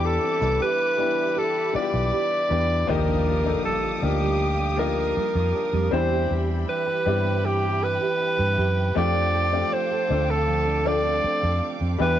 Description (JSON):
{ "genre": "contemporary R&B", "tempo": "79 BPM", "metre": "4/4", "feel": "straight", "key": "unclear", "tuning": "A4 = 439 Hz", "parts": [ { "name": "warm alto saxophone", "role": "melody", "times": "0.0-12.2 s", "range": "G4 to D5", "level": "-24 LUFS", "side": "right 1 dB", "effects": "cassette tape" }, { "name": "clear concert grand piano", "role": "accompaniment", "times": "0.0-12.2 s", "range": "E3 to Bb4", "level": "-29 LUFS", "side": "left 11 dB", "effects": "cassette tape" }, { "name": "warm studio string section", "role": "sustained chords", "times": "0.0-12.2 s", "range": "G4 to Eb6", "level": "-33 LUFS", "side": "right 1 dB", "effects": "cassette tape" }, { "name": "nylon-string guitar", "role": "arpeggios", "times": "0.0-12.2 s", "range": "E3 to B4", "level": "-32 LUFS", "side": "right 11 dB", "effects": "cassette tape" }, { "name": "vintage muted fingered electric bass", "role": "bass", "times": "0.0-12.2 s", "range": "B1 to G2", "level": "-25 LUFS", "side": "equal", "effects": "none" }, { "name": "impact", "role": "sound effects", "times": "2.9-5.9 s", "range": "none", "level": "-35 LUFS", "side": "equal", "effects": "none" } ], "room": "light reverb", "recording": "home recording on cassette, nothing above 7.7 kHz", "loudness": "-21 LUFS", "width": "side -11 dB against mid", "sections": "0.0-2.9 A section; 2.9-12.2 B section", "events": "impact 2.9-5.9", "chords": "0.0 Em7; 2.9 Ebmaj9; 5.9 Cmaj7/E; 9.0 F6" }